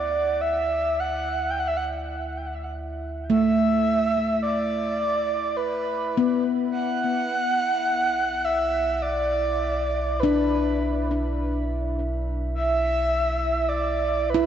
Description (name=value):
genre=ambient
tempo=52 BPM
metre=4/4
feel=straight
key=D major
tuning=A4 = 441 Hz
part: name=breathy flute-like synth lead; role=melody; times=0.0-14.5 s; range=B4 to G5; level=-24 LUFS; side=right 1 dB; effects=wide subtle chorus, tape echo
part: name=handpan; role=arpeggios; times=0.0-14.5 s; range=A3 to E4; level=-24 LUFS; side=left 1 dB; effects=tape echo
part: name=deep rumbling drone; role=bass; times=0.0-14.5 s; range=B1 to D2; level=-31 LUFS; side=right 1 dB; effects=built-in reverb
part: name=glass harmonica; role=texture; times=0.0-14.5 s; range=E4 to E5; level=-35 LUFS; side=right 1 dB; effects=none
room=wet plate reverb, RT60 2.9 s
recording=dreamy mix soaked in reverb, nothing above 7.9 kHz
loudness=-22 LUFS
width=side -9 dB against mid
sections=0.0-14.5 A section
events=fade-in on synth drone 0.0-14.5; fade-in on glass harmonica 0.0-14.5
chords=0.0 D5; 6.7 Bm